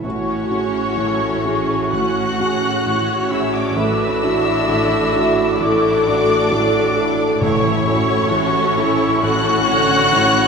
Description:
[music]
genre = cinematic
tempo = 66 BPM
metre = 4/4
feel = rubato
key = unclear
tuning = A4 = 440 Hz
[part]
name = rich studio violin section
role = melody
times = 0.0-10.5 s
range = C#6 to F#6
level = -25 LUFS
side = left 4 dB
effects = none
[part]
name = clear clarinet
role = second line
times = 0.0-10.5 s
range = E4 to F#4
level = -27 LUFS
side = left 1 dB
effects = none
[part]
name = flute section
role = second line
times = 0.0-10.5 s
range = C#6 to D6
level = -25 LUFS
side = left 1 dB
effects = none
[part]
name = rich studio violin section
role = second line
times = 0.0-10.5 s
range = C#5 to F#5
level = -24 LUFS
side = left 2 dB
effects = none
[part]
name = clear studio viola section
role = accompaniment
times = 0.0-10.5 s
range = C#4 to C#5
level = -24 LUFS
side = right 2 dB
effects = none
[part]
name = felt-muted upright piano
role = accompaniment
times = 0.0-10.5 s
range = A1 to A4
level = -21 LUFS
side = right 1 dB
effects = none
[part]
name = mellow French horn section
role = sustained chords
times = 0.0-10.5 s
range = D3 to A4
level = -23 LUFS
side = left 1 dB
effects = none
[part]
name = rich studio double bass section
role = bass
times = 0.0-10.5 s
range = A1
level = -29 LUFS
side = right 2 dB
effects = none
[part]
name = warm studio cello section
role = bass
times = 0.0-10.5 s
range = A2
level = -28 LUFS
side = right 1 dB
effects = none
[part]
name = warm cor anglais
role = second line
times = 0.1-10.5 s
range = C#4 to F#4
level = -26 LUFS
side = right 2 dB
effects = none
[part]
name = timpani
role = percussion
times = 7.4-8.7 s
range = A2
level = -26 LUFS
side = left 2 dB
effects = none
[sound]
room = wet concert hall reverb, RT60 2.6 s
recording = heard from further back in the room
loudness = -15 LUFS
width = side -5 dB against mid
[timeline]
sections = 0.0-10.5 A section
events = none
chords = 0.0 F#sus2/A; 3.8 Dadd9/A; 7.4 A

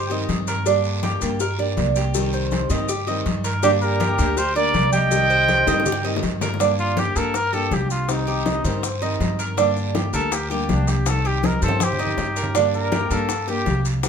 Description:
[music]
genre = latin, Cuban son and guajira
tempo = 162 BPM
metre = 4/4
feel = straight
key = G minor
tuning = A4 = 442 Hz
[part]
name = warm trumpet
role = melody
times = 0.0-0.3, 3.6-13.8 s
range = Bb3 to G5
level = -23 LUFS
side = equal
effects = none
[part]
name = breathy bright concert flute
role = second line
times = 0.0-0.3, 3.6-6.2 s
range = D4 to Eb5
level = -27 LUFS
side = right 3 dB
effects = none
[part]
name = Cuban tres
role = arpeggios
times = 0.0-13.8 s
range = Bb3 to Eb5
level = -25 LUFS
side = right 6 dB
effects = none
[part]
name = upright bass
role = bass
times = 0.0-14.1 s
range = C2 to G2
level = -24 LUFS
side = equal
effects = none
[part]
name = picked steel-string acoustic guitar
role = accompaniment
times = 0.1-14.1 s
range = C3 to G4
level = -28 LUFS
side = left 3 dB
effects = none
[part]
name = congas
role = percussion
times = 0.1-14.1 s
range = none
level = -28 LUFS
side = left 2 dB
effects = none
[part]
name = maracas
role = percussion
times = 0.1-14.1 s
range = none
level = -33 LUFS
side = left 7 dB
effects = none
[part]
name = cowbell and bongos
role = percussion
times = 0.3-14.1 s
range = none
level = -30 LUFS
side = left 6 dB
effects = none
[part]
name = guiro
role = percussion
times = 0.3-14.1 s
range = none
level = -34 LUFS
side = right 5 dB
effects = none
[sound]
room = moderate studio reverb, RT60 0.6 s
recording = minimal, uncompressed stereo recording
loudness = -18 LUFS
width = side -7 dB against mid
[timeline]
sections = 0.0-6.6 A section; 6.6-14.1 B section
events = drum fill 5.7-6.6, 11.4-12.6; trumpet solo 6.6-14.1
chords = 0.0 Cm; 0.7 Gm; 2.1 Cm; 3.6 Gm; 5.1 Cm; 6.6 Gm; 8.1 Cm; 9.6 Gm; 11.1 Cm; 12.6 Gm

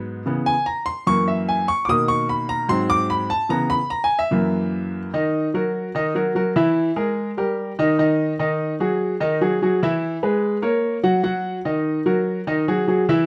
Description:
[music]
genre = jazz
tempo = 147 BPM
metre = 4/4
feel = straight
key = unclear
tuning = A4 = 439 Hz
[part]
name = clear baby grand piano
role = solo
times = 0.0-13.3 s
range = F#2 to D#6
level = -21 LUFS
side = equal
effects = none
[sound]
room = moderate studio reverb, RT60 0.7 s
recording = none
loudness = -21 LUFS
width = mono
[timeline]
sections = 0.0-5.1 A section; 5.1-13.3 B section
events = grand piano solo 0.0-5.1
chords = 0.3 C#m7; 1.1 F#7; 1.9 Bmaj7; 2.7 G#7b9; 3.5 C#m7; 4.3 F#7; 5.1 D#m; 6.8 Edim; 7.6 D#; 8.4 G#5; 10.0 C#m7; 10.8 F#; 11.7 D#m; 12.5 G#5

